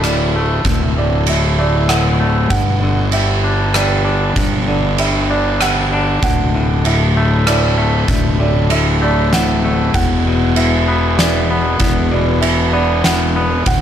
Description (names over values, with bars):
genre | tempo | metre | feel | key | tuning
post-rock | 97 BPM | 3/4 | straight | unclear | A4 = 440 Hz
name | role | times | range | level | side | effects
felt-muted upright piano | arpeggios | 0.0-13.8 s | D5 to F#5 | -22 LUFS | right 6 dB | analog delay
twangy electric guitar | arpeggios | 0.0-13.8 s | D2 to D4 | -18 LUFS | left 3 dB | analog delay
fuzz fingered electric bass | bass | 0.0-13.8 s | D1 to G1 | -17 LUFS | equal | overdrive
oversized low-tuned drum kit | drums | 0.0-13.8 s | kick drum, ride cymbal, rim click, snare drum | -18 LUFS | right 1 dB | none
room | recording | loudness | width
light reverb | none | -12 LUFS | side -9 dB against mid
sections
0.0-13.8 A section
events
none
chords
0.0 D; 2.5 G5; 6.2 D; 9.9 Esus2